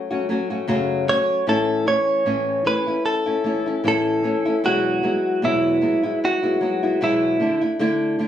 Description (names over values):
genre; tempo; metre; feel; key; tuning
pop; 76 BPM; 4/4; swing 55% on 16ths; A major; A4 = 439 Hz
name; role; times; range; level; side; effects
direct-recorded clean electric guitar; melody; 0.0-7.6 s; E4 to C#5; -20 LUFS; right 1 dB; warbly pitch drift, plate reverb
nylon-string guitar; accompaniment; 0.0-8.3 s; E2 to F#4; -22 LUFS; left 1 dB; none
room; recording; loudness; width
moderate studio reverb, RT60 0.7 s; studio reverb; -18 LUFS; side -10 dB against mid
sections
0.0-8.3 A section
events
none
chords
0.0 F#m; 1.5 A; 4.6 Eadd9; 7.4 Dsus2